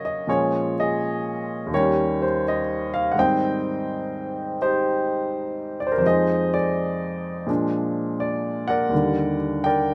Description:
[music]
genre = solo jazz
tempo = 83 BPM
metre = 4/4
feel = swing 67% on 8ths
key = Eb major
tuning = A4 = 439 Hz
[part]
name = clear upright piano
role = solo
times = 0.0-9.9 s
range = Eb2 to G5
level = -23 LUFS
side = equal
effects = none
[sound]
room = light reverb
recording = none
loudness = -23 LUFS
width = mono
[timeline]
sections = 0.0-9.9 A section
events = none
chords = 0.3 Bbm7; 1.7 Eb7; 3.2 Abmaj7; 6.0 Fm7; 7.5 Bb7; 8.9 Ebmaj7

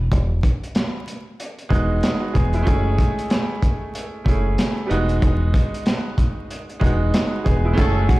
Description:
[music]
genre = hip hop, boom-bap hip-hop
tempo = 94 BPM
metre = 4/4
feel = swing 58% on 16ths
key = unclear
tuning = A4 = 439 Hz
[part]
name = deep dub fingered electric bass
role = bass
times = 0.0-8.1 s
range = E1 to F#1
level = -20 LUFS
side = equal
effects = none
[part]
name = crunchy breakbeat drum kit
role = drums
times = 0.1-8.2 s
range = hi-hat, kick drum, snare drum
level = -21 LUFS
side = equal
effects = none
[part]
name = clear upright piano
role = accompaniment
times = 1.7-8.2 s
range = G3 to G#4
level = -24 LUFS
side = right 2 dB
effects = cassette tape, high-pass filter, low-pass filter
[part]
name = warm horn section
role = stabs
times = 7.8-8.0 s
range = E4 to A4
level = -27 LUFS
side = left 2 dB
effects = high-pass filter, low-pass filter
[part]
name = nylon-string guitar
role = melody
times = 8.1-8.2 s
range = F#4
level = -23 LUFS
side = right 1 dB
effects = high-pass filter, low-pass filter
[sound]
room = light reverb, small room ambience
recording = played on a big sound system in a bare room, large studio reverb, vinyl crackle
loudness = -18 LUFS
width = side -19 dB against mid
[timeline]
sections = 0.0-7.8 A section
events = none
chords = 0.0 Emaj7; 2.7 F#m7; 4.9 Emaj7

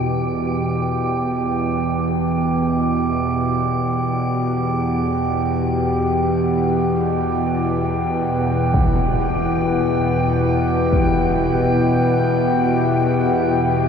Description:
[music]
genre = dark ambient drone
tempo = free time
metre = none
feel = none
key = E minor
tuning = A4 = 440 Hz
[part]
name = deep dark ambient pad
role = sustained chords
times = 0.1-13.9 s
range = E4 to G5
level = -23 LUFS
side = left 2 dB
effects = chorus, built-in reverb
[part]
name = bowed-like drone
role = drone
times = 0.0-13.9 s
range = E2 to B2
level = -19 LUFS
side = right 1 dB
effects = built-in reverb
[part]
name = metallic inharmonic drone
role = texture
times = 0.0-13.9 s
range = G4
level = -24 LUFS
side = equal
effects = chorus, built-in reverb
[part]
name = impact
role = percussion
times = 8.7-11.1 s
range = none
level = -24 LUFS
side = equal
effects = low-pass filter on sfx
[sound]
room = wet huge ambient reverb, RT60 7.1 s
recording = none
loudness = -17 LUFS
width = side -7 dB against mid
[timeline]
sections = 0.0-13.9 A section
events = fade-in on ambient pad 0.0-13.9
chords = 0.0 Em

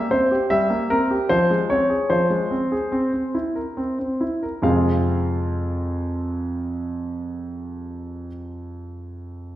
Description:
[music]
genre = classical-period piano sonatina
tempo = 68-77 BPM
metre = 4/4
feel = straight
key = F minor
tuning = A4 = 440 Hz
[part]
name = clear concert grand piano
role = solo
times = 0.0-9.6 s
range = F2 to F5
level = -20 LUFS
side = equal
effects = none
[sound]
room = wet recital hall reverb, RT60 1.7 s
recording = heard from further back in the room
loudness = -20 LUFS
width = side -14 dB against mid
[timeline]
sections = 0.0-4.6 A section; 4.6-8.1 B section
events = slowing down 0.0-4.6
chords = 0.0 C5; 1.3 Fm; 2.9 C7; 4.6 Fm

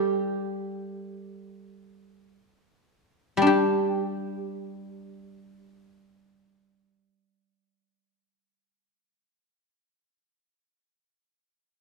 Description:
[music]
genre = chinese traditional, Chinese solo plucked strings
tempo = free time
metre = none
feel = none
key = G gong mode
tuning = A4 = 441 Hz
[part]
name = guzheng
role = solo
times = 0.0-9.4 s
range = G3 to B4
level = -24 LUFS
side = left 1 dB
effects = none
[sound]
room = moderate concert hall reverb, RT60 1.9 s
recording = minimal, uncompressed stereo recording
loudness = -24 LUFS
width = side -3 dB against mid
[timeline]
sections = 0.0-3.5 A section; 3.5-7.9 B section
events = slowing down 0.0-3.5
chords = none

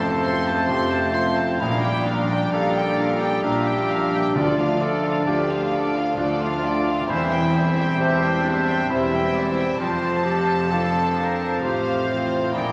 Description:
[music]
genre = cinematic, emotional film score for orchestra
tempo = 66 BPM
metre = 3/4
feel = rubato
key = unclear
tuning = A4 = 440 Hz
[part]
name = warm symphonic violin section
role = melody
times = 0.0-12.7 s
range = D5 to C6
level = -30 LUFS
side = equal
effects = none
[part]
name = mellow hollow baroque flute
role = second line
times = 0.0-12.7 s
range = F5 to Bb5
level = -36 LUFS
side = equal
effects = none
[part]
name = warm clarinet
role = second line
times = 0.0-12.7 s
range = D4 to A4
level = -30 LUFS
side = equal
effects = none
[part]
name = warm oboe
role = second line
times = 0.0-12.7 s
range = C5 to E5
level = -31 LUFS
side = equal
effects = none
[part]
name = warm symphonic violin section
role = second line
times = 0.0-12.7 s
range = F4 to E5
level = -34 LUFS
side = equal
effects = none
[part]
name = bright grand piano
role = accompaniment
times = 0.0-12.7 s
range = E1 to G4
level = -30 LUFS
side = equal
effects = none
[part]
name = warm symphonic viola section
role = accompaniment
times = 0.0-12.7 s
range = A3 to F4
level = -37 LUFS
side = equal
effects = none
[part]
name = warm French horn section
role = sustained chords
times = 0.0-12.7 s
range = F3 to D4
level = -29 LUFS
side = equal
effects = none
[part]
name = concert harp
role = arpeggios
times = 0.0-12.7 s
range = Bb2 to A5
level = -33 LUFS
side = equal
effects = none
[part]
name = rich symphonic cello section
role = bass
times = 0.0-12.7 s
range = D2 to Bb2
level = -34 LUFS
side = equal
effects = none
[part]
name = warm symphonic double bass section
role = bass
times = 0.0-12.7 s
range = E1 to D2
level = -34 LUFS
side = equal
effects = none
[part]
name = timpani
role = percussion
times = 4.4-5.7 s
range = D3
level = -33 LUFS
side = equal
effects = none
[sound]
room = wet scoring stage reverb, RT60 1.7 s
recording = vinyl crackle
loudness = -22 LUFS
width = mono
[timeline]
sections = 0.0-12.7 A section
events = none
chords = 0.0 F; 1.6 Bb6; 4.4 Dm; 7.1 C/E; 9.8 F

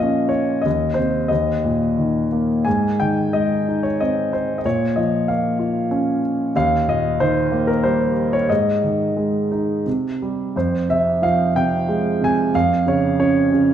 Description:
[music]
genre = classical, lyrical solo piano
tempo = 84-99 BPM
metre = 3/4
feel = rubato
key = Ab major, F harmonic minor from 10.6 s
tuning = A4 = 440 Hz
[part]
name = warm concert grand piano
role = solo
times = 0.0-13.7 s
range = Eb2 to Ab5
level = -17 LUFS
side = equal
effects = none
[sound]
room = wet recital hall reverb, RT60 1.6 s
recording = dark, warm production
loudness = -17 LUFS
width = side -9 dB against mid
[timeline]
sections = 0.0-10.6 A section; 10.6-13.7 B section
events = none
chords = 0.0 Bbm; 0.7 Cm/Eb; 1.3 Eb5; 2.7 Ab; 4.7 Bbm; 6.5 Eb; 8.5 Ab5; 9.9 C5; 10.6 Fm; 12.5 Db/F

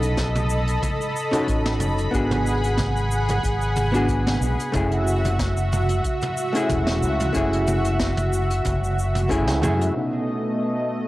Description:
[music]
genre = sunset chillout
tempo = 92 BPM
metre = 4/4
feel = swing 55% on 16ths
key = F# minor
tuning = A4 = 438 Hz
[part]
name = archtop guitar, miked and amplified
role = accompaniment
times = 0.0-11.1 s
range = B2 to A4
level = -26 LUFS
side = equal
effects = auto-pan, low-pass filter, tape echo
[part]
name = lush unison pad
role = sustained chords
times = 0.0-11.1 s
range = B2 to B5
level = -25 LUFS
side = equal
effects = chorus
[part]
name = fingered electric bass with an envelope filter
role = bass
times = 0.0-9.9 s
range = E1 to F#2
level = -23 LUFS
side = equal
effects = none
[part]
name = jazz brush drum kit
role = drums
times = 0.0-11.1 s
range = hi-hat, shaker, snare drum, toms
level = -28 LUFS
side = equal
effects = low-pass filter on toms, low-pass filter on hats, low-pass filter on snare, low-pass filter on perc, low-pass filter on room
[part]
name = electronic kick drum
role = drums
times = 0.2-9.4 s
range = none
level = -29 LUFS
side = equal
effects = overdrive
[sound]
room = light reverb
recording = home recording on cassette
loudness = -20 LUFS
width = side -17 dB against mid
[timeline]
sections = 0.0-10.0 A section; 10.0-11.1 B section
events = band accent 9.5-9.8; filter sweep on drum 10.0-11.1; filter sweep on hollow-body jazz guitar 10.0-11.1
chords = 0.0 B7; 2.1 G#m7b5; 4.7 F#m7; 10.0 B7

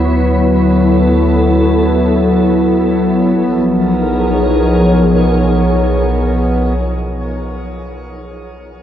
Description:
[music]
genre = ambient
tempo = free time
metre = none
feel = none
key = unclear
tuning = A4 = 440 Hz
[part]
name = glassy FM pad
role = sustained chords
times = 0.0-6.8 s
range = E#3 to C#5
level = -13 LUFS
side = left 1 dB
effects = ensemble chorus, built-in reverb, shimmer reverb
[part]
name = deep rumbling drone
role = bass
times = 0.0-6.7 s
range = B1 to D2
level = -18 LUFS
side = equal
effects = built-in reverb
[part]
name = pedal harmonium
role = drone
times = 0.0-6.7 s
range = B3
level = -20 LUFS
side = right 2 dB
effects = none
[part]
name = wind-like tuned noise texture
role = texture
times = 0.0-3.4 s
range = B4 to B5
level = -26 LUFS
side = right 3 dB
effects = built-in reverb, shimmer reverb
[sound]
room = wet huge ambient reverb, RT60 8.4 s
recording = worn, warbling old tape, cassette tape, warbly pitch drift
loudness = -10 LUFS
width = side -10 dB against mid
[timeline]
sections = 0.0-3.3 A section; 3.3-6.0 B section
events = none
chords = 0.0 Dmaj7; 3.3 Bmaj7

